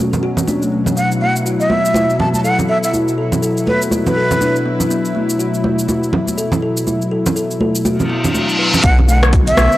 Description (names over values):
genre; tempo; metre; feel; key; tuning
afro house; 122 BPM; 4/4; swing 59% on 16ths; B minor; A4 = 440 Hz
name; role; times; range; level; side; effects
warm analog pad; sustained chords; 0.0-9.8 s; B2 to E4; -19 LUFS; left 1 dB; chorus, sidechain pumping
kalimba; arpeggios; 0.0-9.7 s; F#3 to B4; -22 LUFS; left 1 dB; sidechain pumping, tape echo
afro-pop drum kit; drums; 0.1-9.8 s; hi-hat, rim click, shaker; -22 LUFS; equal; none
congas; percussion; 0.1-9.7 s; none; -19 LUFS; right 1 dB; none
breathy mellow silver concert flute; melody; 1.0-4.6, 8.8-9.8 s; B4 to A5; -18 LUFS; equal; tape echo
reverse cymbal; sound effects; 8.0-8.8 s; none; -17 LUFS; left 1 dB; none
round analog bass; bass; 8.8-9.7 s; B1; -13 LUFS; equal; sidechain pumping
electronic kick drum; drums; 8.8-9.4 s; none; -13 LUFS; equal; overdrive
room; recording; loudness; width
light reverb; dry, gritty hardware recording, transformer saturation, cassette tape; -13 LUFS; side -15 dB against mid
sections
0.0-8.8 A section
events
reverse cymbal 8.0-8.8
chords
0.0 B7(no3); 8.8 Bm7